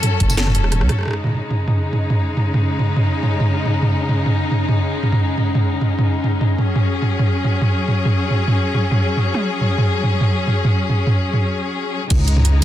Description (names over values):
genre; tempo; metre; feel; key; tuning
half-time drum and bass; 174 BPM; 4/4; swing 54% on 16ths, half-time; unclear; A4 = 441 Hz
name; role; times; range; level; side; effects
rich chamber string section; sustained chords; 0.0-12.6 s; C#3 to A4; -22 LUFS; left 2 dB; sidechain pumping
drum and bass drum kit; drums; 0.0-12.6 s; crash cymbal, hi-hat, rim click, snare drum, tambourine, toms; -18 LUFS; right 1 dB; overdrive
dark detuned saw bass; bass; 0.2-0.9, 12.1-12.6 s; E1 to C#2; -16 LUFS; equal; none
electronic kick drum; drums; 0.2-0.3, 12.1-12.6 s; none; -18 LUFS; equal; none
metallic inharmonic drone; texture; 2.5-11.4 s; C#4; -29 LUFS; left 2 dB; chorus, built-in reverb
room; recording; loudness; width
digital ambience; dense, heavily limited modern master; -16 LUFS; side -12 dB against mid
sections
0.0-1.1 A section; 1.1-12.1 B section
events
drop 0.0-1.1; drum fill 0.4-1.1; break 11.4-12.1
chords
0.0 F#m; 1.1 C#5; 6.6 F#5; 12.1 C#5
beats
0.03 0.38 0.72 | 1.07 1.41 1.76 2.10 | 2.45 2.79 3.14 3.48 | 3.83 4.17 4.52 4.86 | 5.21 5.55 5.90 6.24 | 6.58 6.93 7.28 7.62 | 7.96 8.31 8.65 9.00 | 9.34 9.69 10.03 10.38 | 10.72 11.07 11.41 11.76 | 12.10 12.45